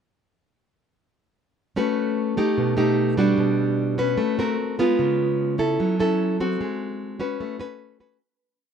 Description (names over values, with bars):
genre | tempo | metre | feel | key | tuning
bossa nova | 149 BPM | 4/4 | straight | unclear | A4 = 441 Hz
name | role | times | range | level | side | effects
nylon-string guitar | solo | 1.8-8.2 s | B2 to B4 | -20 LUFS | equal | none
room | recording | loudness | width
light reverb | none | -20 LUFS | side -7 dB against mid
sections
1.8-8.2 A section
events
fade-out 6.6-8.2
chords
1.8 A69; 2.6 B7alt; 3.4 Gmaj7#11/B; 4.2 A69; 4.6 G#9; 5.0 C#7; 5.8 F#m7; 6.6 G#7; 7.4 A69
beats
| 1.77 2.17 2.57 2.98 | 3.38 3.78 4.18 4.58 | 4.99 5.39 5.79 6.19 | 6.59 6.99 7.39 7.80